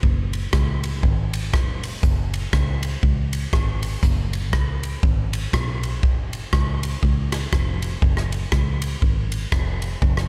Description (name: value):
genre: ska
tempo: 120 BPM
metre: 4/4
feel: swing 60% on 8ths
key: unclear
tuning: A4 = 439 Hz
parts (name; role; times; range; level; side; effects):
- fingered electric bass; bass; 0.0-10.3 s; F1 to C#2; -27 LUFS; equal; none
- swinging big-band drum kit; drums; 0.0-10.3 s; hi-hat, kick drum, ride cymbal, rim click; -24 LUFS; equal; none
room: little or no reverb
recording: none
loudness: -22 LUFS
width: mono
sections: 0.0-10.3 A section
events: none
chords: none